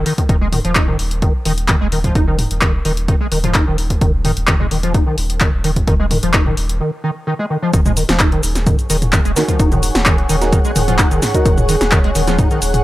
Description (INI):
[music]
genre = acid house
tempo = 129 BPM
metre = 4/4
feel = straight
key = Eb minor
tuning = A4 = 440 Hz
[part]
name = acid bass, square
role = riff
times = 0.0-12.6 s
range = Eb3 to Eb4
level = -20 LUFS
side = equal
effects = overdrive, ensemble chorus, sidechain pumping, tape echo
[part]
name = saturated sub bass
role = bass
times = 0.0-12.8 s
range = Eb1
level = -20 LUFS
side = equal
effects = sidechain pumping
[part]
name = punchy analog drum machine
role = drums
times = 0.1-12.8 s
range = cabasa, handclaps, hi-hat, snare drum, toms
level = -19 LUFS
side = equal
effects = overdrive
[part]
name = electronic kick drum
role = drums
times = 0.2-12.5 s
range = none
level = -16 LUFS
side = equal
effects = none
[part]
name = granular cloud pad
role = texture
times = 8.5-12.8 s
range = Ab4 to Gb5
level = -22 LUFS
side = equal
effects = built-in reverb, sidechain pumping
[part]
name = deep mellow chord stab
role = stabs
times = 9.4-11.5 s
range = Eb4 to Bb4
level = -22 LUFS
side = right 1 dB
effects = chorus, tape echo
[sound]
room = light reverb, digital ambience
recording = none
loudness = -13 LUFS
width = side -16 dB against mid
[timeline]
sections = 0.0-7.7 A section; 7.7-12.8 B section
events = break 6.8-7.7; drop 7.7-12.8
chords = 0.0 N.C.; 7.7 Ebm